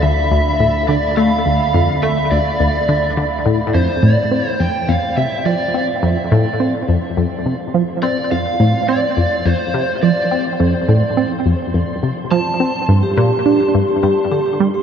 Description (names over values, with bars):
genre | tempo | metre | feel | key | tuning
ambient, sequencer-driven space music | 105 BPM | 4/4 | straight | D dorian | A4 = 442 Hz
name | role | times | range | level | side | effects
lead guitar through a small cranked amp | melody | 0.0-12.8 s | C5 to A5 | -20 LUFS | right 1 dB | overdrive, analog chorus, tape echo
tight sequenced synth | riff | 0.0-14.7 s | D2 to D4 | -16 LUFS | equal | chorus, tape echo
analog drone | bass | 0.0-3.7 s | D2 | -22 LUFS | equal | chorus, phaser
wind-like tuned noise texture | texture | 0.0-14.8 s | B5 to C6 | -30 LUFS | equal | built-in reverb, ensemble chorus
vibraphone with soft mallets | arpeggios | 13.0-14.8 s | G4 | -16 LUFS | equal | auto-pan, tape echo
room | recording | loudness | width
wet huge ambient reverb, RT60 8.9 s | dreamy mix soaked in reverb | -14 LUFS | side -8 dB against mid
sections
0.0-3.7 A section; 3.7-14.8 B section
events
fade-in on synth texture 3.7-14.8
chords
0.0 Dm; 3.7 F5; 12.9 N.C.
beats
0.31 0.89 | 1.46 2.03 2.60 3.17 | 3.74 4.31 4.88 5.46 | 6.03 6.60 7.17 7.74 | 8.31 8.88 9.46 10.03 | 10.60 11.17 11.74 12.31 | 12.88 13.46 14.03 14.60